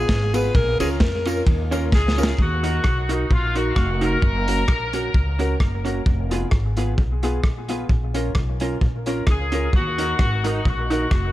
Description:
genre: ska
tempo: 131 BPM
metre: 4/4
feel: swing 55% on 8ths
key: Eb minor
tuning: A4 = 442 Hz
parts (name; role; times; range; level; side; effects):
- bright alto saxophone; melody; 0.0-1.4 s; Ab4 to Cb5; -25 LUFS; left 1 dB; tape echo
- vintage hollow-body jazz guitar; accompaniment; 0.0-11.1 s; Db4 to Cb5; -29 LUFS; right 6 dB; none
- dark upright piano; stabs; 0.0-11.1 s; Cb4 to Bb4; -30 LUFS; left 4 dB; tape echo
- upright bass; bass; 0.0-11.3 s; F1 to F2; -24 LUFS; equal; none
- crunchy breakbeat drum kit; drums; 0.1-11.2 s; hi-hat, kick drum, ride cymbal, rim click, snare drum; -21 LUFS; equal; none
- tambourine; percussion; 0.3-2.3 s; none; -41 LUFS; left 2 dB; none
- mellow horn section; melody; 1.9-5.9, 9.3-11.3 s; Eb4 to Bb4; -25 LUFS; left 1 dB; tape echo
room: studio reverb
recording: none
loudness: -18 LUFS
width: side -15 dB against mid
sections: 0.0-2.4 A section; 2.4-11.3 B section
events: alto saxophone solo 0.0-2.4; drum fill 1.9-2.4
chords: 0.0 Fdim; 0.6 Bbm; 2.4 Ebm; 4.2 Gb; 6.1 Fdim; 7.9 Bbm; 9.7 Ebm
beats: 0.10 | 0.55 1.01 1.47 1.93 | 2.39 2.85 3.31 3.77 | 4.23 4.69 5.15 5.61 | 6.06 6.52 6.98 7.44 | 7.90 8.36 8.82 9.28 | 9.73 10.19 10.65 11.11

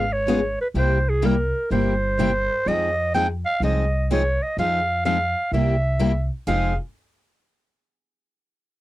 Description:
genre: acoustic string swing (jazz manouche)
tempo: 126 BPM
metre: 4/4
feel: swing 64% on 8ths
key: F minor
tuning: A4 = 441 Hz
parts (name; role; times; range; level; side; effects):
- growling clarinet; melody; 0.0-6.8 s; Ab4 to G5; -23 LUFS; right 1 dB; none
- picked steel-string acoustic guitar; accompaniment; 0.0-6.7 s; C3 to Ab4; -25 LUFS; left 6 dB; none
- picked steel-string acoustic guitar; accompaniment; 0.0-6.7 s; C3 to C5; -29 LUFS; right 7 dB; none
- upright bass; bass; 0.0-6.8 s; F1 to F2; -24 LUFS; equal; none
- picked steel-string acoustic guitar; second line; 6.5-6.8 s; Ab4; -37 LUFS; right 6 dB; none
room: little or no reverb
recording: dry, close 1970s-style studio recording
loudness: -19 LUFS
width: side -16 dB against mid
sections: 0.0-6.5 A section; 6.5-8.4 B section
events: none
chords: 0.0 Db7; 0.8 C7; 2.7 Fm7; 5.5 C7; 6.5 Fm7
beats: 0.27 | 0.75 1.23 1.71 2.18 | 2.66 3.13 3.61 4.09 | 4.56 5.04 5.52 5.99 | 6.47

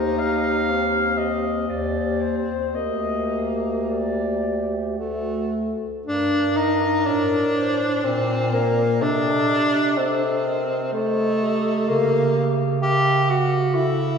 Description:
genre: classical, lyrical piece for single-reed quartet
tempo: 53-65 BPM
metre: 3/4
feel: rubato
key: G minor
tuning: A4 = 439 Hz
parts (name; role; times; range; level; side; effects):
- dark clarinet; melody; 0.0-14.2 s; G4 to F5; -28 LUFS; left 3 dB; none
- mellow alto saxophone; second line; 0.0-14.2 s; F#4 to E5; -29 LUFS; right 3 dB; none
- mellow tenor saxophone; accompaniment; 0.0-14.2 s; A3 to G4; -22 LUFS; left 1 dB; none
- warm bass clarinet; bass; 0.0-14.2 s; D2 to C#3; -25 LUFS; right 1 dB; none
room: wet concert hall reverb, RT60 2.0 s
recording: heard from further back in the room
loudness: -19 LUFS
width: side -6 dB against mid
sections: 0.0-6.1 A section; 6.1-14.2 B section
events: none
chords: 0.0 Cm/Eb; 2.8 Gm/D; 5.0 D; 6.1 Gm; 8.0 Bb; 9.0 Adim/C; 11.9 C#dim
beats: 0.69 1.70 | 2.76 3.89 4.99 | 6.08 7.08 8.05 | 9.02 9.98 10.93 | 11.88 12.81 13.73

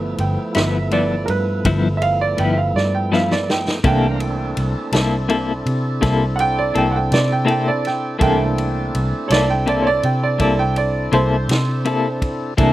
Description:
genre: slow blues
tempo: 55 BPM (dotted quarters)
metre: 12/8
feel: straight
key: unclear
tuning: A4 = 436 Hz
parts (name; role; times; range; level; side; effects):
- bright upright piano; accompaniment; 0.0-12.7 s; E3 to G5; -21 LUFS; right 4 dB; slapback echo
- tonewheel organ; sustained chords; 0.0-12.7 s; F3 to Bb5; -26 LUFS; equal; slow rotary speaker
- vintage muted fingered electric bass; bass; 0.0-12.7 s; G1 to C3; -21 LUFS; equal; none
- vintage drum kit; drums; 0.2-12.7 s; kick drum, ride cymbal, snare drum; -22 LUFS; equal; none
- clean electric guitar; accompaniment; 0.6-12.7 s; G2 to A4; -19 LUFS; left 4 dB; tremolo, slapback echo
room: little or no reverb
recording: recorded outdoors, with no room sound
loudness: -16 LUFS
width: side -15 dB against mid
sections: 0.0-12.7 A section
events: upright piano solo 0.0-12.7; drum fill 2.7-3.8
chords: 0.0 G13; 3.8 C13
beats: 0.55 1.65 2.75 | 3.84 4.94 6.03 7.12 | 8.22 9.31 10.40 11.50 | 12.59

